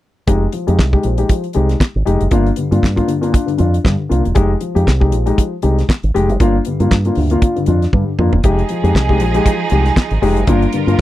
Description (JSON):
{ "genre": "disco", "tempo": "118 BPM", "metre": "4/4", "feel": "swing 56% on 16ths", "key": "F dorian", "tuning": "A4 = 441 Hz", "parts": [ { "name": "dark concert grand piano", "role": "accompaniment", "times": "0.3-11.0 s", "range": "G2 to G4", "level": "-16 LUFS", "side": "left 3 dB", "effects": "none" }, { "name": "fingered electric bass with an envelope filter", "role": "bass", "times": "0.3-11.0 s", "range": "E1 to G2", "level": "-15 LUFS", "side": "right 1 dB", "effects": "none" }, { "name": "damped 70s drum kit", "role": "drums", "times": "0.3-11.0 s", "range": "handclaps, hi-hat, kick drum, snare drum, toms", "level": "-15 LUFS", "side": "equal", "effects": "none" }, { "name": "clear studio string section", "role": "sustained chords", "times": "8.4-11.0 s", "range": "F3 to Bb4", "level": "-20 LUFS", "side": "right 5 dB", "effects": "none" } ], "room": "light reverb", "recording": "dry, close 1970s-style studio recording", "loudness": "-12 LUFS", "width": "side -14 dB against mid", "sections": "0.3-11.0 A section", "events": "drum fill 7.9-8.4", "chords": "0.3 Fm7; 2.3 Gm7; 4.4 Fm7; 6.4 Gm7; 8.4 Fm7; 10.5 Gm7", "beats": "| 0.28 0.79 1.30 1.81 | 2.32 2.83 3.34 3.85 | 4.36 4.87 5.38 5.89 | 6.40 6.91 7.42 7.93 | 8.44 8.95 9.46 9.97 | 10.48 10.98" }